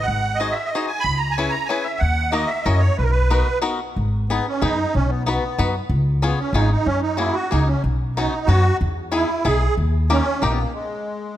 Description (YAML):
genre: musette waltz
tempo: 186 BPM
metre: 3/4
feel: straight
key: B major, G# minor from 4.0 s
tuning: A4 = 442 Hz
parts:
  - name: musette accordion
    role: melody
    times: 0.0-11.4 s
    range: G#3 to B5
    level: -23 LUFS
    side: right 3 dB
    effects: none
  - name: upright bass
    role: bass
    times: 0.0-10.6 s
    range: G#1 to F#2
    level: -20 LUFS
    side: equal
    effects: none
  - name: bluegrass banjo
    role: accompaniment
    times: 0.4-10.6 s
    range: A#3 to B#4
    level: -25 LUFS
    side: left 4 dB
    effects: none
room: light reverb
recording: none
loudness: -18 LUFS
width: side -12 dB against mid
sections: 0.0-4.0 A section; 4.0-11.4 B section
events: stop 10.7-11.4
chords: 0.1 G#7; 1.0 C#m7; 2.0 D#m; 2.7 F#7; 3.0 Bmaj7; 4.0 G#m; 4.9 B; 5.9 C#7; 6.9 F#add9; 7.8 Badd9; 8.8 Emaj7; 9.8 D#; 10.7 N.C.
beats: | 0.07 0.40 0.72 | 1.05 1.37 1.69 | 2.02 2.34 2.66 | 2.98 3.31 3.63 | 3.96 4.29 4.61 | 4.93 5.25 5.57 | 5.89 6.21 6.53 | 6.86 7.18 7.51 | 7.83 8.16 8.48 | 8.81 9.13 9.45 | 9.77 10.09 10.41 | 10.74 11.06